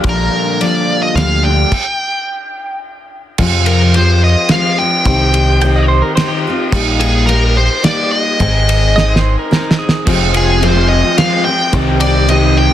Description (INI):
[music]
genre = folk rock and heartland rock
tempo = 108 BPM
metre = 3/4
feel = straight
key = unclear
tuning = A4 = 440 Hz
[part]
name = picked steel-string acoustic guitar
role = accompaniment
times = 0.0-12.7 s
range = F2 to Ab4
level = -18 LUFS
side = left 4 dB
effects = none
[part]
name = electric guitar through a small old amp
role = riff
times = 0.0-1.7, 10.1-12.7 s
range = F2 to G4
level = -18 LUFS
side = right 1 dB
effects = lush chorus
[part]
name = deep dub picked electric bass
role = bass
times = 0.0-12.7 s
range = F1 to F2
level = -13 LUFS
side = equal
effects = none
[part]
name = cloth-damped thuddy drum kit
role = drums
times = 0.0-12.4 s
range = crash cymbal, kick drum, ride cymbal, snare drum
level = -17 LUFS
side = right 1 dB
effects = none
[part]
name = dark smooth lead guitar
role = melody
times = 0.1-12.7 s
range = Ab4 to G5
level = -16 LUFS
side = right 1 dB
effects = overdrive
[part]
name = pedal steel guitar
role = second line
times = 5.6-10.2 s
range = Eb4 to G5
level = -19 LUFS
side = right 5 dB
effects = none
[sound]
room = studio reverb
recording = dense, heavily limited modern master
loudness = -10 LUFS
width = side -11 dB against mid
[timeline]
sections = 0.0-3.4 A section; 3.4-12.7 B section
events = stop 1.7-3.4; drum fill 8.9-10.1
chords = 0.0 Bb6; 3.4 Fm; 5.1 Cm; 6.7 Eb/Bb; 8.4 Ab; 10.1 Fm; 11.7 Cm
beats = | 0.04 0.60 1.16 | 1.72 2.27 2.83 | 3.39 3.94 4.50 | 5.05 5.61 6.17 | 6.72 7.28 7.83 | 8.39 8.95 9.50 | 10.06 10.61 11.17 | 11.72 12.28